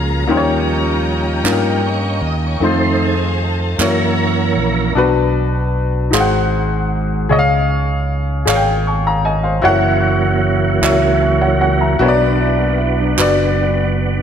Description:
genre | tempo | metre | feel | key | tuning
slow gospel | 51 BPM (dotted quarters) | 6/8 | straight | B harmonic minor from 5.0 s | A4 = 445 Hz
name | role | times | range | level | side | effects
warm upright piano | accompaniment | 0.0-14.2 s | G#2 to C#6 | -17 LUFS | left 2 dB | none
clear studio string section | sustained chords | 0.0-5.0 s | Db4 to Bb5 | -25 LUFS | left 2 dB | none
tonewheel organ | sustained chords | 0.0-4.9, 9.7-14.2 s | Eb3 to Eb5 | -19 LUFS | right 4 dB | fast rotary speaker, chorus vibrato
fingered electric bass | bass | 0.0-14.2 s | F#1 to G2 | -18 LUFS | equal | none
group handclap | percussion | 1.5-13.6 s | none | -23 LUFS | right 6 dB | none
mellow electric guitar | second line | 12.0-14.1 s | F#3 to B4 | -22 LUFS | right 4 dB | spring reverb
room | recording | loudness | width
moderate scoring stage reverb, RT60 1.9 s | none | -13 LUFS | side -8 dB against mid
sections
0.0-5.0 A section; 5.0-14.2 B section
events
tonewheel organ solo 0.0-5.0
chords
0.3 Eb7; 2.6 F7; 3.8 Gb7; 5.0 Bm; 6.1 G#7; 7.3 C#; 9.7 F#7; 12.0 Bm

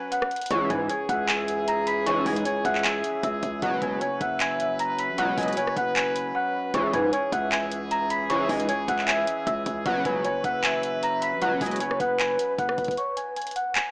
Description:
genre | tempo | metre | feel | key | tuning
hip hop, trap | 154 BPM | 4/4 | half-time | C# dorian | A4 = 440 Hz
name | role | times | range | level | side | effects
worn celesta | melody | 0.0-13.9 s | C#5 to B6 | -27 LUFS | equal | low-pass filter
clear brass ensemble | sustained chords | 0.0-12.9 s | E3 to B4 | -32 LUFS | equal | none
trap drum kit | drums | 0.1-13.8 s | handclaps, hi-hat, kick drum, rim click | -29 LUFS | equal | none
sync-sweep polysynth | stabs | 0.5-11.8 s | C#2 to F#3 | -31 LUFS | equal | chorus
distorted 808-style bass | bass | 0.5-13.0 s | F#1 to G#2 | -34 LUFS | equal | distortion
warm velvety synth lead | second line | 0.7-12.9 s | B4 to E5 | -30 LUFS | equal | chorus, digital delay
room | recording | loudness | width
light reverb, digital ambience | small speaker sound | -23 LUFS | side -29 dB against mid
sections
0.5-13.0 A section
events
break 0.0-0.5, 6.4-6.7, 13.0-13.9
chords
0.0 F#sus4; 0.5 C#m; 3.6 F#sus4; 6.7 C#m; 9.9 F#sus4; 13.0 C#5

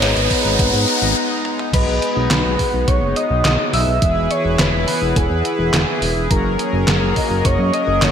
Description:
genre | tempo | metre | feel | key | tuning
synthwave | 105 BPM | 4/4 | straight | B major | A4 = 440 Hz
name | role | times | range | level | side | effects
expressive synth lead | melody | 0.0-8.1 s | G#4 to E5 | -22 LUFS | left 1 dB | chorus, ping-pong delay
chorused pulse-width pad | sustained chords | 0.0-8.1 s | E3 to A#5 | -23 LUFS | equal | sidechain pumping
mellow synth brass | stabs | 0.0-8.1 s | A#3 to A#5 | -25 LUFS | left 2 dB | chorus, digital delay
fat analog bass | bass | 0.0-8.1 s | E1 to G#2 | -20 LUFS | equal | none
detuned 8-bit digital drum machine | drums | 0.0-8.1 s | crash cymbal, handclaps, hi-hat, snare drum, toms | -22 LUFS | equal | high-pass filter on hats, high-pass filter on snare, high-pass filter on toms, high-pass filter on cymbals, high-pass filter on room, gated reverb
riser | sound effects | 0.0-1.2 s | none | -21 LUFS | equal | none
electronic kick drum | drums | 0.3-7.6 s | none | -20 LUFS | equal | none
FM electric piano with soft pad layer | second line | 1.7-8.1 s | G#5 to E6 | -27 LUFS | right 2 dB | chorus, phaser, cassette tape
room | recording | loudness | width
moderate plate reverb, RT60 3.4 s | bright 1980s-style digital production | -15 LUFS | side -8 dB against mid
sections
0.0-1.7 A section; 1.7-8.1 B section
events
riser 0.0-1.2; filter sweep on analog polysynth 0.0-1.7; break 1.2-1.7; drum fill 1.4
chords
0.0 G#madd9; 1.7 B6; 4.0 E; 6.3 F#add9

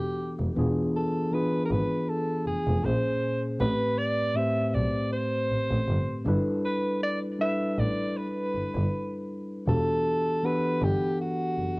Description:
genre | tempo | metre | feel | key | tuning
contemporary R&B | 79 BPM | 4/4 | swing 54% on 16ths | E minor | A4 = 440 Hz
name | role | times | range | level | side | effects
breathy alto saxophone | melody | 0.0-11.8 s | F#4 to E5 | -29 LUFS | equal | cassette tape
mellow tine electric piano | accompaniment | 0.0-11.8 s | A2 to F#5 | -28 LUFS | left 1 dB | none
warm double bass | bass | 0.4-11.6 s | E1 to B1 | -28 LUFS | equal | none
room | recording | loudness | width
light reverb | home recording on cassette | -25 LUFS | side -26 dB against mid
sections
0.0-11.8 A section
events
none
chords
0.0 Em11; 0.6 E7b9; 2.8 A#m9; 3.6 Am9; 6.3 G6; 9.7 Em11

